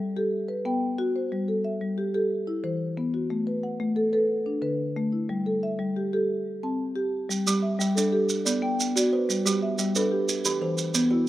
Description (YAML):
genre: southern african traditional, mbira-style interlocking cycle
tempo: 121 BPM (dotted quarters)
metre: 12/8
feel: straight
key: unclear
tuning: A4 = 440 Hz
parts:
  - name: marimba with soft mallets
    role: arpeggios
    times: 0.0-11.3 s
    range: D3 to A5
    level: -25 LUFS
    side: left 1 dB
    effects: none
  - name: maracas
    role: percussion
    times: 7.3-11.1 s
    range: none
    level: -28 LUFS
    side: right 5 dB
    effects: none
  - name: kalimba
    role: arpeggios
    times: 7.5-11.3 s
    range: E3 to E5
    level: -28 LUFS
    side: right 4 dB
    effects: none
room: light reverb, small room ambience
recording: rough home demo mix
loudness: -24 LUFS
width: side -14 dB against mid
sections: 0.0-7.3 A section; 7.3-11.3 A section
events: none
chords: 0.3 B5; 1.3 Am7/G; 2.3 E5; 3.3 F#madd11/A; 4.3 D5; 5.3 Emadd11/G; 6.3 C5; 7.3 G5; 8.3 Bm; 9.3 G; 10.3 Em